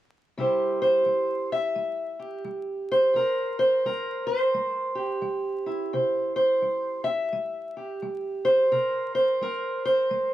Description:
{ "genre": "acoustic country blues, solo or duo", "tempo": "86 BPM", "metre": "4/4", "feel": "swing 61% on 8ths", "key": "C mixolydian", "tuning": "A4 = 440 Hz", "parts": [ { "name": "fingerpicked steel-string acoustic guitar", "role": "solo", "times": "0.4-10.3 s", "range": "C3 to E5", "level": "-23 LUFS", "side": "equal", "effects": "none" } ], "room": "moderate studio reverb, RT60 0.8 s", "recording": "dark, warm production, vinyl crackle", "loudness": "-23 LUFS", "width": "side -13 dB against mid", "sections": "0.4-10.3 A section", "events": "none", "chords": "0.4 C" }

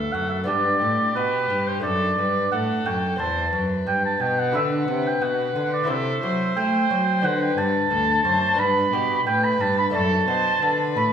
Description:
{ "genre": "classical, baroque-style sonata movement with continuo", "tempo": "88 BPM", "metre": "4/4", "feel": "rubato", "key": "G major", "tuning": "A4 = 443 Hz", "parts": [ { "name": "rich violin", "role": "melody", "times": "0.0-11.1 s", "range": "G4 to C5", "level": "-27 LUFS", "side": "left 3 dB", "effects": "none" }, { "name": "warm oboe", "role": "second line", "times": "0.0-11.1 s", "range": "B4 to B5", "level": "-22 LUFS", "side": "right 2 dB", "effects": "none" }, { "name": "lute", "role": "accompaniment", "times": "0.0-11.1 s", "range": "D2 to D5", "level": "-31 LUFS", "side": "left 4 dB", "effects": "none" }, { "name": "clear cello", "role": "bass", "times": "0.0-11.1 s", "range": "D2 to A3", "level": "-26 LUFS", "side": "equal", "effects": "none" } ], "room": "wet recital hall reverb, RT60 1.5 s", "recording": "recorded in a church or concert hall", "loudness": "-19 LUFS", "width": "side -8 dB against mid", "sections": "0.0-11.1 A section", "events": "none", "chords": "0.5 G; 1.8 D/F#; 3.2 C/E; 4.5 Bm; 5.9 Am/C; 7.2 D7; 8.6 G; 9.9 D/F#" }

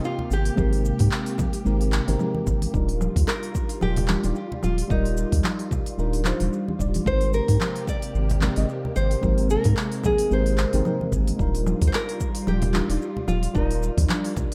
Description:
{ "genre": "sunset chillout", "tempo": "111 BPM", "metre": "4/4", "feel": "swing 56% on 16ths", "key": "Ab lydian", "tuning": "A4 = 441 Hz", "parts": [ { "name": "nylon-string guitar", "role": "melody", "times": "0.0-14.3 s", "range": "Eb4 to D5", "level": "-32 LUFS", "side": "equal", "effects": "tape echo" }, { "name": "mellow FM electric piano", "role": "accompaniment", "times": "0.0-14.5 s", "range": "G3 to Eb5", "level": "-32 LUFS", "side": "equal", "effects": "chorus, phaser, analog delay" }, { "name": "soft string machine", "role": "sustained chords", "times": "0.0-14.5 s", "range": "C3 to G4", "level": "-34 LUFS", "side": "equal", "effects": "ensemble chorus" }, { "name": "deep house drum kit", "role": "drums", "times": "0.0-14.5 s", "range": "congas, handclaps, hi-hat, shaker", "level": "-32 LUFS", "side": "equal", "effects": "none" }, { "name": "congas", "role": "percussion", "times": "0.2-14.5 s", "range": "none", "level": "-34 LUFS", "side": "equal", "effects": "none" }, { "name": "round analog bass", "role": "bass", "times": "0.3-14.1 s", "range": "Eb1 to Ab2", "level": "-25 LUFS", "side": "equal", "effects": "none" }, { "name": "electronic kick drum", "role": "drums", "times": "0.6-14.5 s", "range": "none", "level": "-29 LUFS", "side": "equal", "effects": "none" } ], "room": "light reverb, digital ambience", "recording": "none", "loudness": "-23 LUFS", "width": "mono", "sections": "0.0-14.5 A section", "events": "none", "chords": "0.0 Abmaj9; 2.7 Ebmaj9; 7.1 Abmaj9; 11.4 Ebmaj9" }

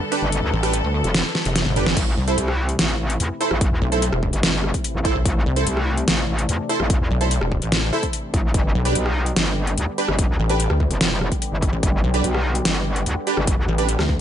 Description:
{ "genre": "heavy wobble dubstep", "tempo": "146 BPM", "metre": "4/4", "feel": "half-time", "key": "A minor", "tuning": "A4 = 440 Hz", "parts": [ { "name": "clear symphonic string section", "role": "sustained chords", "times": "0.0-14.2 s", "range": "C3 to A4", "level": "-30 LUFS", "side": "left 2 dB", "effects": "sidechain pumping, low-pass filter" }, { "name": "supersaw stab", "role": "stabs", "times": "0.1-13.9 s", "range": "D4 to C5", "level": "-26 LUFS", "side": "right 4 dB", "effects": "lush chorus, tape echo" }, { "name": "dubstep drum kit", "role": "drums", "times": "0.1-14.1 s", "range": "crash cymbal, hi-hat, rim click, snare drum, toms", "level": "-23 LUFS", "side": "equal", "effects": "overdrive" }, { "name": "metallic wobble bass", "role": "bass", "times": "0.2-13.7 s", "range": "F1 to E2", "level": "-22 LUFS", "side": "equal", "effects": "distortion, chorus, overdrive" }, { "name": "pulsing pluck wobble bass", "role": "bass", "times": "0.5-14.2 s", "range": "E1 to D2", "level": "-21 LUFS", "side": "equal", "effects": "chorus, overdrive" }, { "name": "electronic kick drum", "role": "drums", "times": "2.0-14.2 s", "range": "none", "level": "-22 LUFS", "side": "equal", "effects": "overdrive" } ], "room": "digital ambience", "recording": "nothing above 10.6 kHz", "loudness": "-18 LUFS", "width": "side -10 dB against mid", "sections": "0.0-2.0 A section; 2.0-14.2 A section", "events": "drop 0.0-2.0, 2.0-14.2; drum fill 1.4-2.0; band accent 1.9", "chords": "0.0 G; 2.0 Am; 8.5 G" }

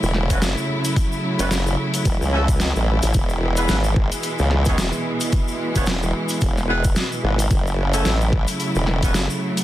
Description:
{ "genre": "glitch hop", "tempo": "110 BPM", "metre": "4/4", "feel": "swing 57% on 16ths", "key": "F# minor", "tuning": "A4 = 439 Hz", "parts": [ { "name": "rich studio string section", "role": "sustained chords", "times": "0.0-9.6 s", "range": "B2 to E4", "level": "-25 LUFS", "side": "right 1 dB", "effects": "sidechain pumping" }, { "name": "formant-sweep wobble bass", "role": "bass", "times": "0.0-9.3 s", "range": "E1 to C#2", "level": "-20 LUFS", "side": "equal", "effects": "chorus, overdrive" }, { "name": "tube shaker", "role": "percussion", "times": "0.0-9.6 s", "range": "none", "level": "-33 LUFS", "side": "left 2 dB", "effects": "none" }, { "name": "dubstep drum kit", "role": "drums", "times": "0.1-9.6 s", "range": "hi-hat, snare drum", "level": "-25 LUFS", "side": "equal", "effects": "overdrive" }, { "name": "mellow horn section", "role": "stabs", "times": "0.3-9.1 s", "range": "A3 to C#5", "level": "-28 LUFS", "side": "equal", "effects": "sidechain pumping, ping-pong delay" }, { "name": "electronic kick drum", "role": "drums", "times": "0.3-9.1 s", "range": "none", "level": "-20 LUFS", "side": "equal", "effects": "overdrive" } ], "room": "small room ambience", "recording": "dense, heavily limited modern master, vinyl crackle", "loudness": "-18 LUFS", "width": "side -14 dB against mid", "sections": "0.0-9.6 A section", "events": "none", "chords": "0.0 F#m7; 3.1 E; 7.5 F#m7" }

